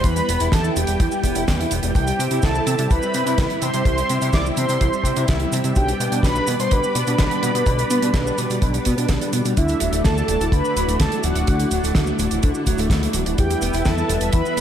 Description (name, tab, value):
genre	italo disco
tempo	126 BPM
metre	4/4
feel	straight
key	unclear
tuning	A4 = 440 Hz
part	mellow synth brass	melody	0.0-14.6 s	E4 to D6	-24 LUFS	equal	chorus, ping-pong delay
part	string machine, full ensemble	sustained chords	0.0-14.6 s	G3 to G5	-26 LUFS	left 1 dB	ensemble chorus
part	electric guitar at the edge of break-up	arpeggios	0.0-14.6 s	D3 to G4	-27 LUFS	right 2 dB	vintage 12-bit sampler grit, ping-pong delay
part	fat analog bass	bass	0.0-14.6 s	D1 to C3	-23 LUFS	equal	none
part	damped 70s drum kit	drums	0.0-14.6 s	cabasa, hi-hat, snare drum	-25 LUFS	right 2 dB	gated reverb
part	kick drum	drums	0.0-14.4 s	none	-20 LUFS	equal	none
room	studio ambience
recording	none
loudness	-17 LUFS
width	side -9 dB against mid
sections	0.0-14.6 A section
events	none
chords	0.0 Em; 2.0 C; 5.8 G/B; 9.6 Dadd9; 13.4 Em